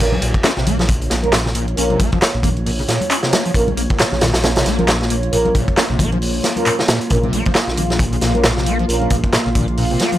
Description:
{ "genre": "breakbeat, breaks", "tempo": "135 BPM", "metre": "4/4", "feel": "swing 57% on 16ths", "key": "Bb minor", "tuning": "A4 = 440 Hz", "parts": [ { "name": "dark analog pad", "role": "sustained chords", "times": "0.6-10.2 s", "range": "Bb3 to F5", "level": "-24 LUFS", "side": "right 1 dB", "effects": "chorus, vintage 12-bit sampler grit, sidechain pumping" }, { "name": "screaming distorted acid line", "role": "riff", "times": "0.0-10.2 s", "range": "Bb2 to Db4", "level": "-23 LUFS", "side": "equal", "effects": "distortion, ensemble chorus, cassette tape, analog delay" }, { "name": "dark brass ensemble", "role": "stabs", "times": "0.0-9.1 s", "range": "Bb3 to Bb4", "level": "-22 LUFS", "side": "right 1 dB", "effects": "analog delay" }, { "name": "dark detuned saw bass", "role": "bass", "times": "0.0-10.0 s", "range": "Bb1", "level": "-21 LUFS", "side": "equal", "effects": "none" }, { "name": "punchy analog drum machine", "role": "drums", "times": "0.0-10.2 s", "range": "handclaps, hi-hat", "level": "-24 LUFS", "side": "right 1 dB", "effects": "none" }, { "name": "vintage drum kit", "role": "drums", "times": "0.0-10.2 s", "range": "crash cymbal, hi-hat, kick drum, snare drum", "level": "-18 LUFS", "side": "equal", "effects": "none" }, { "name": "congas", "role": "percussion", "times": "0.1-10.2 s", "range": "none", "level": "-26 LUFS", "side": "left 3 dB", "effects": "none" } ], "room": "little or no reverb", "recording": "dry, gritty hardware recording", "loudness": "-14 LUFS", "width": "side -13 dB against mid", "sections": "0.0-10.2 A section", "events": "drop 0.0-10.2", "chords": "0.0 Bbm" }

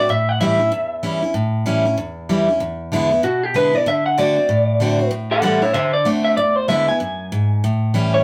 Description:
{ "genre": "rock", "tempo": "191 BPM", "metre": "4/4", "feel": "swing 61% on 8ths", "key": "unclear", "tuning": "A4 = 440 Hz", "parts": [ { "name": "electric guitar through a small old amp", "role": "melody", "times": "0.0-8.2 s", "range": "F#4 to G#5", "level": "-20 LUFS", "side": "equal", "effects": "none" }, { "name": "picked steel-string acoustic guitar", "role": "accompaniment", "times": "0.0-8.2 s", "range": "E2 to F#4", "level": "-21 LUFS", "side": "equal", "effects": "none" } ], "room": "moderate studio reverb, RT60 0.7 s", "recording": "band playing live in one room", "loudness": "-18 LUFS", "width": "mono", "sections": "0.0-7.6 A section", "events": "none", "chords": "0.1 A7; 2.6 E7; 3.9 D7; 5.1 A7; 5.7 D7; 6.4 E7; 7.6 A7" }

